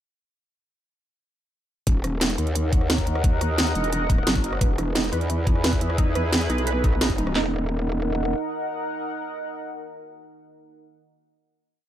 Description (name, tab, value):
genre	dark technical drum and bass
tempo	175 BPM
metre	4/4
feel	straight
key	Eb phrygian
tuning	A4 = 440 Hz
part	sweeping resonant pad	sustained chords	1.9-10.9 s	Eb4 to Gb5	-30 LUFS	equal	chorus, sidechain pumping
part	growl bass	bass	1.9-8.3 s	Eb1 to E2	-25 LUFS	equal	chorus, tube saturation
part	drum and bass drum kit	drums	1.9-7.4 s	kick drum, snare drum	-22 LUFS	equal	none
part	drum and bass drum kit	drums	1.9-7.3 s	hi-hat, rim click, snare drum	-26 LUFS	right 1 dB	overdrive
part	warbly dusty pluck	arpeggios	4.6-7.5 s	Eb4 to B4	-30 LUFS	right 4 dB	chorus, sidechain pumping, tape echo
room	light reverb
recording	dark, warm production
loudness	-21 LUFS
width	side -11 dB against mid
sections	1.9-7.4 drop; 7.4-10.1 final chord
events	drop 1.9-7.4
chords	1.9 Ebm; 4.6 E; 7.4 Ebm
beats	| 1.87 2.21 2.55 2.90 | 3.24 3.58 3.92 4.27 | 4.61 4.95 5.30 5.64 | 5.98 6.33 6.67 7.01 | 7.35 7.70 8.04 8.38 | 8.72 9.07 9.41 9.75